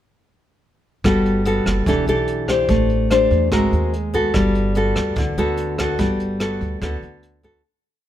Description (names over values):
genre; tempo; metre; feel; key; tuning
bossa nova; 146 BPM; 4/4; straight; G major; A4 = 441 Hz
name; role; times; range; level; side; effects
nylon-string guitar; accompaniment; 1.0-7.6 s; D3 to C5; -18 LUFS; left 1 dB; none
upright bass; bass; 1.0-7.6 s; E1 to E2; -23 LUFS; right 1 dB; none
jazz brush drum kit; drums; 1.0-7.5 s; hi-hat, kick drum, rim click; -26 LUFS; right 1 dB; none
room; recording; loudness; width
light reverb; none; -17 LUFS; side -12 dB against mid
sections
1.0-7.6 A section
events
fade-out 6.0-7.6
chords
1.0 Gmaj9; 1.9 Em7; 2.7 Am7; 3.5 Ab9; 4.3 Gmaj9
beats
| 1.04 1.45 1.86 2.27 | 2.69 3.10 3.51 3.92 | 4.33 4.75 5.16 5.57 | 5.98 6.40 6.81 7.22